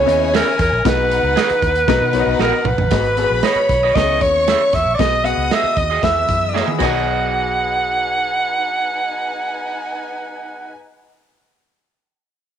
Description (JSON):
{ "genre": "uptempo 1960s-style soul", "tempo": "116 BPM", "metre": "4/4", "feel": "straight", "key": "B major", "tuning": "A4 = 441 Hz", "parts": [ { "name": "warm alto saxophone", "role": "melody", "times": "0.0-10.7 s", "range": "A#4 to F#5", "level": "-17 LUFS", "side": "right 2 dB", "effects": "none" }, { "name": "dark studio violin section", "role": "second line", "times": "0.0-10.7 s", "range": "D#4 to E6", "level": "-26 LUFS", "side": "left 2 dB", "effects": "none" }, { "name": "bright upright piano", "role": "accompaniment", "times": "0.0-10.7 s", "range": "B1 to E5", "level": "-23 LUFS", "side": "left 13 dB", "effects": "none" }, { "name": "vintage muted fingered electric bass", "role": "bass", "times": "0.0-10.7 s", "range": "G#1 to B2", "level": "-24 LUFS", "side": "left 1 dB", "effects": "none" }, { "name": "crunchy breakbeat drum kit", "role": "drums", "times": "0.1-6.9 s", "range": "crash cymbal, hi-hat, kick drum, snare drum, toms", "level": "-22 LUFS", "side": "right 4 dB", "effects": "none" }, { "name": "electric guitar through a small old amp", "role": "stabs", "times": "0.3-10.8 s", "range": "E4 to E5", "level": "-25 LUFS", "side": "right 10 dB", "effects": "none" }, { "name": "electric guitar through a small old amp", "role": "riff", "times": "6.5-6.8 s", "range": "A#3 to G#4", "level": "-28 LUFS", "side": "left 13 dB", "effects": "none" } ], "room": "moderate spring reverb, RT60 1.5 s, small room ambience", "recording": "1960s-style stereo with parts hard left and right", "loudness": "-15 LUFS", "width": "side -9 dB against mid", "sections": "0.0-2.9 A section; 2.9-7.1 B section; 7.1-11.2 C section", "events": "drum fill 2.4-2.9, 6.5-7.1", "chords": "0.0 C#m7; 0.9 B6; 1.9 Bmaj7; 2.9 G#m7; 4.0 C#m7; 5.0 B6; 6.0 Emaj7; 6.8 B6" }